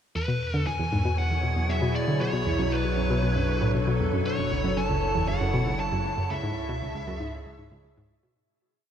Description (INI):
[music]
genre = ambient, sequencer-driven space music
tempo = 117 BPM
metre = 4/4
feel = straight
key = unclear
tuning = A4 = 441 Hz
[part]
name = biting lead guitar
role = melody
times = 0.2-7.8 s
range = B4 to A5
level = -31 LUFS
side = equal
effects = overdrive, analog delay
[part]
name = evolving wavetable pad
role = sustained chords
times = 1.2-8.4 s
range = B2 to A4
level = -30 LUFS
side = left 1 dB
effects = chorus, built-in reverb
[part]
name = analog pluck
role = riff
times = 0.2-8.3 s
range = C#2 to D3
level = -28 LUFS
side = equal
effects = chorus, analog delay
[part]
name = round analog bass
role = bass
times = 0.2-8.3 s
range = F#1 to E2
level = -31 LUFS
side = equal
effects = none
[part]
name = wind-like tuned noise texture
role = texture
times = 0.7-8.4 s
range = C#5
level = -38 LUFS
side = right 2 dB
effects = built-in reverb
[sound]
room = moderate shimmer reverb, RT60 7.7 s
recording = none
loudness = -24 LUFS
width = side -9 dB against mid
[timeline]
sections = 0.2-8.4 A section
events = filter sweep on synth arpeggio sound 0.2-8.4; fade-out 5.6-8.4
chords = 0.2 Eadd9; 2.2 Bm7; 4.3 F#m7; 6.3 C#m